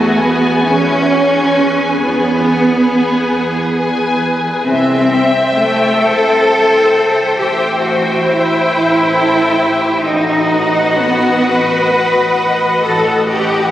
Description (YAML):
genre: classical, slow romantic movement for string orchestra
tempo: 45 BPM (dotted quarters)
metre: 12/8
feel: rubato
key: E major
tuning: A4 = 442 Hz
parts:
  - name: warm symphonic violin section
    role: melody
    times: 0.0-13.7 s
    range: F#5 to G#5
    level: -21 LUFS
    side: left 3 dB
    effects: none
  - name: rich symphonic violin section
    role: second line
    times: 0.0-13.7 s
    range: E4 to E5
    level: -20 LUFS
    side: left 2 dB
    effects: none
  - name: warm symphonic viola section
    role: accompaniment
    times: 0.0-13.7 s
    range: G#4 to E5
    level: -20 LUFS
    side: left 1 dB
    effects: none
  - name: clear symphonic double bass section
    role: bass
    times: 0.0-13.7 s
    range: A1 to E2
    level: -22 LUFS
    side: right 1 dB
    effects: none
  - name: rich symphonic cello section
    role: bass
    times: 0.0-13.7 s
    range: A3 to B4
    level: -13 LUFS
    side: equal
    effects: none
room: wet church reverb, RT60 3.4 s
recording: recorded on a phone in the room, studio reverb, compression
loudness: -11 LUFS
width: side -12 dB against mid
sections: 0.0-13.7 A section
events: none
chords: 0.0 E; 4.6 C; 7.4 Am7; 10.0 B7/A